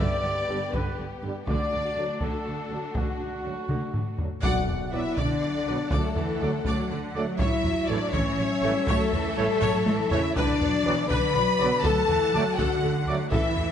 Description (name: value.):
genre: cinematic, epic orchestral film score.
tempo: 81 BPM (dotted quarters).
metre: 6/8.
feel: straight.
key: B minor from 4.4 s.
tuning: A4 = 441 Hz.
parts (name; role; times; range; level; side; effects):
warm symphonic violin section; melody; 0.0-13.7 s; F#4 to B5; -35 LUFS; left 3 dB; none.
warm symphonic violin section; second line; 0.0-13.7 s; B3 to B5; -32 LUFS; left 3 dB; none.
clear symphonic viola section; accompaniment; 0.0-13.7 s; D3 to F#5; -34 LUFS; equal; none.
mellow trumpet section; stabs; 0.0-13.2 s; F#4 to D5; -34 LUFS; equal; none.
warm symphonic cello section; bass; 0.0-13.7 s; D2 to G3; -32 LUFS; right 3 dB; none.
warm symphonic double bass section; bass; 0.0-13.6 s; G1 to D2; -33 LUFS; right 3 dB; none.
solo taiko drums; drums; 0.0-13.7 s; none; -30 LUFS; equal; none.
clear trombone section; sustained chords; 0.5-13.2 s; D3 to B3; -35 LUFS; right 4 dB; none.
mellow French horn section; sustained chords; 0.5-13.7 s; A3 to B4; -28 LUFS; left 4 dB; none.
timpani; percussion; 4.4-5.1 s; B2; -37 LUFS; left 1 dB; none.
impact; sound effects; 4.6-5.9 s; none; -40 LUFS; equal; none.
room: moderate scoring stage reverb, RT60 1.6 s.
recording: nothing above 10.4 kHz.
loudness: -23 LUFS.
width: side -8 dB against mid.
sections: 0.0-4.4 A section; 4.4-13.7 B section.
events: drum fill 3.7-4.4, 9.6-10.4; band accent 4.4-4.9; impact 4.4-5.9.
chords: 0.0 G; 1.5 D; 4.4 Bm; 5.9 D; 7.4 A; 10.4 Bm; 11.8 D.